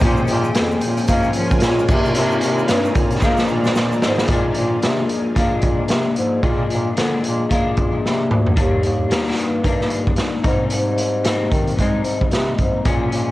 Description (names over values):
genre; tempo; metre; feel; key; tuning
indie pop, bedroom pop; 112 BPM; 4/4; swing 60% on 16ths; unclear; A4 = 441 Hz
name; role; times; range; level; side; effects
electric guitar through a small old amp; accompaniment; 0.0-13.3 s; Ab2 to Eb4; -22 LUFS; left 5 dB; analog chorus, vibrato effect, cassette tape
granular cloud pad; sustained chords; 0.0-4.3 s; F4 to Ab5; -26 LUFS; right 1 dB; built-in reverb, cassette tape
mellow bass clarinet; bass; 0.0-13.3 s; D2 to Bb3; -22 LUFS; right 1 dB; transformer saturation
raw garage drum kit; drums; 0.0-13.3 s; crash cymbal, hi-hat, kick drum, snare drum, toms; -19 LUFS; equal; cassette tape
egg shaker; percussion; 0.0-4.3 s; none; -44 LUFS; right 8 dB; none
room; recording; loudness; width
light reverb, small room ambience; home recording on cassette; -16 LUFS; side -16 dB against mid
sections
0.0-4.3 A section; 4.3-8.6 B section; 8.6-13.3 C section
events
drum fill 3.2-4.3, 8.0-8.6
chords
0.0 Bbm7; 1.9 Cm9; 3.2 Bb7; 8.6 Ebmaj7; 10.4 Abmaj7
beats
| 0.01 0.55 1.08 1.62 | 2.15 2.69 3.22 3.75 | 4.29 4.83 5.36 5.89 | 6.43 6.97 7.50 8.04 | 8.57 9.11 9.64 10.18 | 10.71 11.25 11.78 12.32 | 12.85